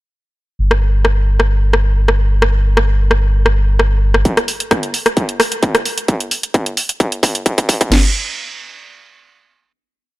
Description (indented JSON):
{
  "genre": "driving peak-time techno",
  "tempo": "131 BPM",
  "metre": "4/4",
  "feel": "straight",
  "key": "unclear",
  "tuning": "A4 = 441 Hz",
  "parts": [
    { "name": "saturated sub bass", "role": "bass", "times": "0.6-4.2 s", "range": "G1", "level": "-13 LUFS", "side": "equal", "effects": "tube saturation, sidechain pumping, low-pass filter" },
    { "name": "techno drum kit", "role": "drums", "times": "0.7-7.9 s", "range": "hi-hat, rim click", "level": "-17 LUFS", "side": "equal", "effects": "overdrive, sidechain pumping on hats" },
    { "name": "techno drum kit", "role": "drums", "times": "4.3-8.0 s", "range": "crash cymbal, kick drum, snare drum", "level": "-16 LUFS", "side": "equal", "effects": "distortion, overdrive, high-pass filter on kick, high-pass filter on snare, high-pass filter on cymbals" }
  ],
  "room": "little or no reverb",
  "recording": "dry, gritty hardware recording",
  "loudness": "-13 LUFS",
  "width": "side -18 dB against mid",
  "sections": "0.6-4.3 intro; 4.3-7.9 build; 7.9-9.7 final hit",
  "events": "build-up 4.3-7.9; drum fill 6.1-7.9",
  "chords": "none"
}